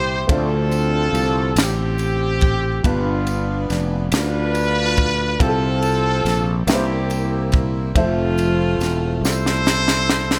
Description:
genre	slow gospel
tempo	47 BPM (dotted quarters)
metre	6/8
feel	straight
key	F major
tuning	A4 = 440 Hz
part	warm horn section	melody	0.0-10.4 s	A3 to C5	-24 LUFS	equal	none
part	warm baby grand piano	accompaniment	0.0-10.4 s	G2 to E5	-28 LUFS	equal	none
part	sustaining fretless electric bass	bass	0.0-10.4 s	E1 to D2	-24 LUFS	equal	none
part	crisp fusion drum kit	drums	0.3-10.4 s	kick drum, ride cymbal, snare drum	-24 LUFS	equal	none
part	tambourine	percussion	0.7-10.1 s	none	-38 LUFS	equal	none
room	light reverb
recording	none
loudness	-19 LUFS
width	mono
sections	0.0-10.4 A section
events	drum fill 9.2-10.4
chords	0.3 Dm7; 2.8 G7; 5.4 F/C; 6.7 C7; 8.0 Fmaj7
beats	| 0.28 1.56 | 2.84 4.12 | 5.39 6.67 | 7.95 9.23

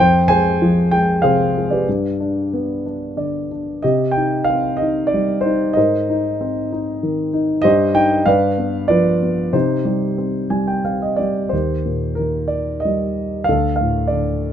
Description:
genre	classical, lyrical solo piano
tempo	93 BPM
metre	3/4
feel	uneven beats, rubato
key	C minor, Eb lydian from 11.5 s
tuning	A4 = 440 Hz
part	dark concert grand piano	solo	0.0-14.5 s	D2 to Ab5	-16 LUFS	equal	none
room	light reverb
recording	close, detailed microphones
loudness	-16 LUFS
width	side -9 dB against mid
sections	0.0-11.5 A section; 11.5-14.5 B section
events	grand piano fill 2.8-3.8, 10.2-11.5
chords	0.0 Fmadd9; 1.9 G; 3.8 Cm; 5.8 Abadd9; 7.6 Cm/G; 8.3 G7; 9.5 Cm; 11.5 Eb; 13.5 Dm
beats	0.61 1.24 | 1.87 2.51 3.17 | 3.83 4.48 5.13 | 5.77 6.40 7.03 | 7.64 8.27 8.90 | 9.54 10.19 10.86 | 11.52 12.19 12.84 | 13.48 14.11

